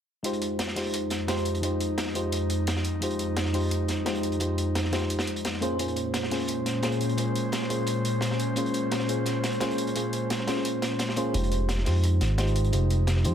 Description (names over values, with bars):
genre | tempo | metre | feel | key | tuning
liquid drum and bass | 173 BPM | 4/4 | straight | F minor | A4 = 439 Hz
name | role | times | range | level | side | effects
mellow FM electric piano | accompaniment | 0.2-13.3 s | Ab3 to C5 | -29 LUFS | equal | chorus, low-pass filter, digital delay
airy breathy pad | sustained chords | 0.5-13.3 s | F2 to C5 | -30 LUFS | equal | chorus
crunchy breakbeat drum kit | drums | 0.2-13.3 s | hi-hat, snare drum | -33 LUFS | right 1 dB | high-pass filter on hats, high-pass filter on snare, high-pass filter on room
electronic hi-hat | drums | 0.2-13.3 s | none | -38 LUFS | left 1 dB | none
smooth gliding synth bass | bass | 11.3-13.3 s | F1 to F2 | -23 LUFS | equal | none
room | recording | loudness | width
light reverb, small room ambience | none | -25 LUFS | side -9 dB against mid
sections
0.2-13.3 A section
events
filter sweep on FM electric piano 0.2-13.3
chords
0.2 Fm9; 5.6 Bbm9; 11.3 Fm9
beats
| 0.24 0.59 0.94 1.28 | 1.63 1.98 2.33 2.67 | 3.02 3.37 3.71 4.06 | 4.41 4.75 5.10 5.45 | 5.79 6.14 6.49 6.83 | 7.18 7.53 7.88 8.22 | 8.57 8.91 9.26 9.61 | 9.96 10.30 10.65 11.00 | 11.34 11.69 12.04 12.38 | 12.73 13.08